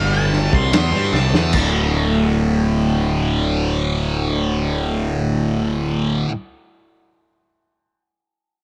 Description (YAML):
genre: psychedelic rock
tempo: 74 BPM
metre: 4/4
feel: straight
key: unclear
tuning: A4 = 444 Hz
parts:
  - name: octave-fuzz lead guitar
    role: melody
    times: 0.0-1.5 s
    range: F5 to C6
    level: -26 LUFS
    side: equal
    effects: distortion, slapback echo
  - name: thick fuzz guitar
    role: riff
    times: 0.0-6.3 s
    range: D2 to D4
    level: -22 LUFS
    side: equal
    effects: distortion, phaser
  - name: fuzz picked electric bass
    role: bass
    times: 0.0-6.2 s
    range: D1 to G2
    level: -24 LUFS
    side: equal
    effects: overdrive
  - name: hand-pumped harmonium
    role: drone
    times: 0.0-5.6 s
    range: D2 to A2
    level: -29 LUFS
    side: equal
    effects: none
  - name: vintage drum kit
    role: drums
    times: 0.3-1.7 s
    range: crash cymbal, kick drum, ride cymbal, snare drum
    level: -24 LUFS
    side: equal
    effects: none
room: light reverb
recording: none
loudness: -19 LUFS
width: mono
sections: 0.0-1.5 A section; 1.5-4.8 B section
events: lead electric guitar solo 0.0-1.5; drum fill 1.1-1.5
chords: 0.0 G5; 1.5 D5